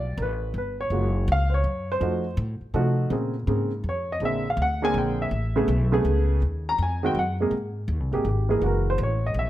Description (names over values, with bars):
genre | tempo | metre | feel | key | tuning
jazz piano trio | 163 BPM | 3/4 | swing 66% on 8ths | unclear | A4 = 439 Hz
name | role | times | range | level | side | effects
warm upright piano | melody | 0.0-9.5 s | C3 to Bb5 | -25 LUFS | right 1 dB | none
upright bass | bass | 0.0-9.5 s | Gb1 to C3 | -25 LUFS | equal | none
room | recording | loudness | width
light reverb | close, detailed microphones | -22 LUFS | side -14 dB against mid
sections
0.0-7.5 A section; 7.5-9.5 B section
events
upright piano solo 7.5-9.5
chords
0.0 Gadd9; 0.9 Gbmaj9; 2.0 F7b9; 3.1 Bbm9; 4.2 Bb9; 5.3 Amaj9; 6.4 Ab7(no3); 7.5 Abmaj7sus2; 8.6 Gb9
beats
0.18 0.55 | 0.91 1.28 1.65 | 2.02 2.38 2.75 | 3.12 3.48 3.85 | 4.22 4.58 4.95 | 5.32 5.69 6.05 | 6.42 6.79 7.15 | 7.52 7.89 8.26 | 8.62 8.99 9.36